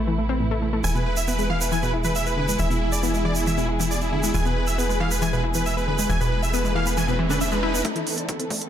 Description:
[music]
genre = uplifting trance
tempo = 137 BPM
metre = 4/4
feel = straight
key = unclear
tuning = A4 = 441 Hz
[part]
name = dark studio string section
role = sustained chords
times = 0.0-8.7 s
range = B2 to A4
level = -30 LUFS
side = equal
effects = sidechain pumping, low-pass filter
[part]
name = tight sequencer bass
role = bass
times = 0.0-7.8 s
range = E1 to A1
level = -26 LUFS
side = equal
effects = sidechain pumping
[part]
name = analog pluck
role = arpeggios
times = 0.1-8.6 s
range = A2 to E4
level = -27 LUFS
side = left 3 dB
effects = chorus, sidechain pumping, ping-pong delay
[part]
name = dense compressed supersaw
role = melody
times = 0.8-8.7 s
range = E4 to G#5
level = -27 LUFS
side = right 1 dB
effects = sidechain pumping, low-pass filter, ping-pong delay
[part]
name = tube shaker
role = percussion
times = 0.8-7.8 s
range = none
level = -31 LUFS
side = right 4 dB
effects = none
[part]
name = riser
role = sound effects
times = 5.8-8.7 s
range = none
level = -31 LUFS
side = right 1 dB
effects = none
[part]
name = electronic hi-hat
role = drums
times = 7.8-8.7 s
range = none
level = -29 LUFS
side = right 3 dB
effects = sidechain pumping on cymbals, sidechain pumping on hats
[part]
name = electronic kick drum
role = drums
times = 7.8-8.6 s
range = none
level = -32 LUFS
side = equal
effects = high-pass filter on kick, high-pass filter on room
[sound]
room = light reverb, digital ambience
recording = none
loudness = -21 LUFS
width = side -10 dB against mid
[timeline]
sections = 0.0-7.8 A section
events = filter sweep on synth pluck 0.0-7.8; riser 5.8-7.8, 7.8-8.7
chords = 0.0 Amadd9; 0.8 E; 7.8 Amadd9

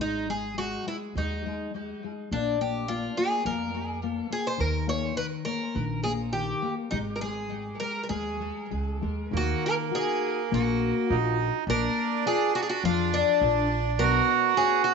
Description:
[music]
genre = fado-style ballad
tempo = 104 BPM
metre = 4/4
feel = rubato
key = Eb minor from 9.3 s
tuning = A4 = 440 Hz
[part]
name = picked twelve-string acoustic guitar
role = melody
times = 0.0-14.9 s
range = D4 to C#5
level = -29 LUFS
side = left 1 dB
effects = tape echo
[part]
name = nylon-string guitar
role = accompaniment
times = 0.0-14.9 s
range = D#3 to D5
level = -31 LUFS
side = left 8 dB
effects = none
[part]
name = upright bass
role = bass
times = 0.0-14.2 s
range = G#1 to E#2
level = -31 LUFS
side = right 2 dB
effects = none
[part]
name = accordion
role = second line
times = 9.3-14.9 s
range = Bb3 to F#4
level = -26 LUFS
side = right 12 dB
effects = none
[sound]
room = wet echo chamber reverb, RT60 1.2 s, studio ambience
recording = 1960s-style stereo with parts hard left and right, nothing above 8.0 kHz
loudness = -25 LUFS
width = side -5 dB against mid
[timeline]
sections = 0.0-9.3 A section; 9.3-14.9 B section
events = none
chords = 0.0 G#5; 2.3 A#5; 4.6 D#5; 6.9 G#5; 9.3 Ebm; 11.7 Bb; 14.0 Bsus2

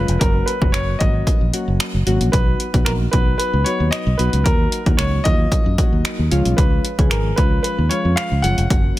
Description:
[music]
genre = dance-pop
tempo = 113 BPM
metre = 4/4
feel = straight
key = unclear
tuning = A4 = 440 Hz
[part]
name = warm concert grand piano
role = melody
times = 0.0-9.0 s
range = A#4 to F#5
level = -24 LUFS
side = equal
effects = tape echo
[part]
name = soft electric-piano-like synth keys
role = accompaniment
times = 0.0-9.0 s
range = E#3 to G#4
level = -24 LUFS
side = left 2 dB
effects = chorus, sidechain pumping
[part]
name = fingered electric bass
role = bass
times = 0.0-8.9 s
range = E#1 to F#2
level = -19 LUFS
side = equal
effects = sidechain pumping
[part]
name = punchy analog drum machine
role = drums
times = 0.1-9.0 s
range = finger snaps, hi-hat, kick drum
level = -18 LUFS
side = equal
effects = none
[sound]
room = digital ambience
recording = none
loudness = -15 LUFS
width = side -16 dB against mid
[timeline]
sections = 0.0-9.0 A section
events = none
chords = 0.2 F#; 2.3 B; 4.5 D#m; 6.3 C#

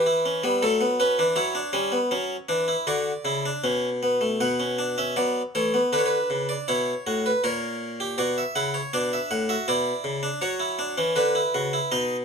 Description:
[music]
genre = classical, baroque-style 3-part fugue for harpsichord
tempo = 80 BPM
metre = 4/4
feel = straight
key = B minor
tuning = A4 = 440 Hz
[part]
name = harpsichord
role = solo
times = 0.0-12.2 s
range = A2 to F#5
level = -22 LUFS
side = equal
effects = none
[sound]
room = moderate studio reverb, RT60 0.8 s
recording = minimal, uncompressed stereo recording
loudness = -22 LUFS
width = side -6 dB against mid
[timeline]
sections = 0.0-4.4 A section; 4.4-12.2 B section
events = none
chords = 0.0 C#m7b5/E; 1.4 F#5; 2.9 Bm; 7.4 F#7/A#; 8.9 Bm

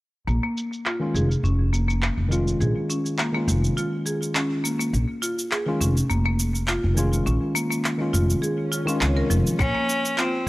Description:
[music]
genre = organic downtempo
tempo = 103 BPM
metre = 4/4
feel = swing 54% on 16ths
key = unclear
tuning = A4 = 439 Hz
[part]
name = marimba with hard mallets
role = arpeggios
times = 0.3-10.5 s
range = F3 to Bb4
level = -27 LUFS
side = equal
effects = low-pass filter, analog delay
[part]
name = upright bass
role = bass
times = 0.3-10.5 s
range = F1 to Db2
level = -22 LUFS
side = equal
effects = none
[part]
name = electronic shaker and handclaps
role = drums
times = 0.3-10.3 s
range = none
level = -28 LUFS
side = right 1 dB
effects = low-pass filter on perc, low-pass filter on snare
[part]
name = bright tine electric piano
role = accompaniment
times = 1.0-9.6 s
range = Eb3 to F4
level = -27 LUFS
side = left 1 dB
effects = sidechain pumping, low-pass filter, analog delay
[part]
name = swell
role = sound effects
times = 8.6-9.6 s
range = none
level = -33 LUFS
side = left 2 dB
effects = none
[part]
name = rich cello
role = melody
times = 9.6-10.5 s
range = C4 to Db4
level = -23 LUFS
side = left 1 dB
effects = none
[part]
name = electronic kick drum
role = drums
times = 9.6-9.7 s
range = none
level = -24 LUFS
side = equal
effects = none
[sound]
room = small room ambience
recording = dry, gritty hardware recording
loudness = -21 LUFS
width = side -18 dB against mid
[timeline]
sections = 0.3-9.6 A section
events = swell 8.6-9.6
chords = 0.3 Eb9sus4; 4.9 Bbm7; 9.6 Eb7sus2 (rootless)

